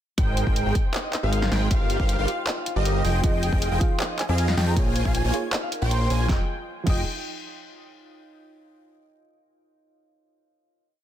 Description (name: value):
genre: future bass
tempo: 157 BPM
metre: 4/4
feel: half-time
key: F minor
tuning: A4 = 440 Hz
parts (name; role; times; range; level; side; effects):
- airy dreamy lead; arpeggios; 0.2-7.0 s; Eb5 to Ab5; -35 LUFS; equal; chorus, sidechain pumping, dub echo
- concert harp; arpeggios; 0.2-7.0 s; Eb4 to Bb5; -36 LUFS; left 1 dB; sidechain pumping, dub echo
- big bright polysynth; riff; 0.2-7.0 s; F3 to Ab5; -29 LUFS; right 1 dB; analog chorus, sidechain pumping, dub echo
- fat analog bass; bass; 0.2-7.0 s; F1 to F2; -24 LUFS; equal; sidechain pumping
- electronic kick drum; drums; 0.2-6.9 s; none; -24 LUFS; equal; small room reverb
- pop drum kit; drums; 0.2-6.9 s; crash cymbal, handclaps, hi-hat, snare drum; -30 LUFS; equal; small room reverb
- soft round pluck; accompaniment; 3.2-7.0 s; F3 to F5; -32 LUFS; right 4 dB; chorus, sidechain pumping, dub echo
- breathy mellow silver concert flute; melody; 4.2-6.3 s; F5 to C6; -35 LUFS; right 1 dB; sidechain pumping, dub echo
room: digital ambience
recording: dense, heavily limited modern master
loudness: -21 LUFS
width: side -11 dB against mid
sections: 0.2-6.3 drop; 6.3-7.8 final chord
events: drop 0.2-6.3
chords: 0.2 Abmaj7; 1.7 C7sus4/G; 3.0 Fm7; 4.8 Bbm7; 6.3 Fm7